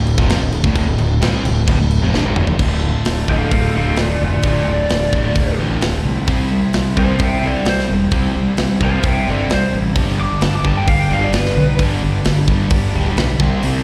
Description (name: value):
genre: hard rock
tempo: 130 BPM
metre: 4/4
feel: straight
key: D dorian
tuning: A4 = 440 Hz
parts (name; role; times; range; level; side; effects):
- distorted electric guitar; riff; 0.0-13.8 s; D2 to C5; -28 LUFS; equal; overdrive, slapback echo
- overdriven semi-hollow guitar; riff; 0.0-13.8 s; D2 to C4; -28 LUFS; equal; none
- sludgy distorted guitar; riff; 0.0-13.8 s; D2 to C4; -23 LUFS; equal; overdrive, slapback echo
- fuzz fingered electric bass; bass; 0.0-13.8 s; D1 to C2; -21 LUFS; equal; overdrive
- tight metal drum kit; drums; 0.1-13.7 s; crash cymbal, hi-hat, kick drum, snare drum, toms; -23 LUFS; equal; none
- lead guitar through a small cranked amp; melody; 3.3-11.8 s; F4 to D6; -23 LUFS; equal; overdrive, slapback echo
room: light reverb, studio ambience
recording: live gig heard through the venue's PA, recital hall reverb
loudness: -16 LUFS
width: mono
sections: 0.0-2.6 A section; 2.6-13.8 B section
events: drum fill 2.1-2.6; lead electric guitar solo 2.6-13.8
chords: 0.0 Dm; 6.3 C; 10.0 G